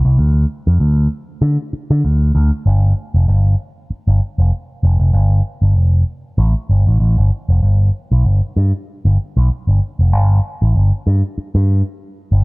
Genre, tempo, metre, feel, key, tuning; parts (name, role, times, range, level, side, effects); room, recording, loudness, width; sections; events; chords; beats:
funk; 96 BPM; 4/4; swing 56% on 16ths; A4 = 438 Hz
picked electric bass with an envelope filter; solo; 0.0-12.4 s; F1 to D3; -12 LUFS; equal
little or no reverb; -13 LUFS; side -31 dB against mid
0.0-7.6 A section; 7.6-12.4 B section
| 0.17 0.80 1.42 2.04 | 2.66 3.28 3.90 4.52 | 5.14 5.76 6.38 7.01 | 7.63 8.25 8.88 9.50 | 10.12 10.75 11.37 12.00